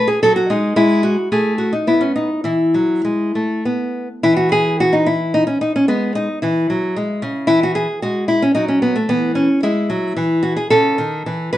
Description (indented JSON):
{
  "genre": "classical, baroque-style dance for nylon-string guitar",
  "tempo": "100-114 BPM",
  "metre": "3/4",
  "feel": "rubato",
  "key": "E major",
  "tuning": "A4 = 440 Hz",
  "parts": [
    { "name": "nylon-string guitar", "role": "solo", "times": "0.0-11.6 s", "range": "C#3 to B4", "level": "-15 LUFS", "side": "equal", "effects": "none" }
  ],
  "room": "wet small room reverb, RT60 0.6 s",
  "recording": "band playing live in one room, nothing above 10.5 kHz",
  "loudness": "-15 LUFS",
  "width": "side -13 dB against mid",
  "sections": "0.0-4.2 A section; 4.2-11.6 B section",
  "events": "none",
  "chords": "0.0 F#m; 0.8 N.C.; 2.4 E; 4.2 N.C.; 5.9 E; 7.5 E69; 10.7 A/C#",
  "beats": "0.21 | 0.75 1.30 1.86 | 2.44 3.04 3.64 | 4.23 4.79 5.34 | 5.89 6.42 6.95 | 7.49 8.02 8.56 | 9.09 9.62 10.16 | 10.71 11.26"
}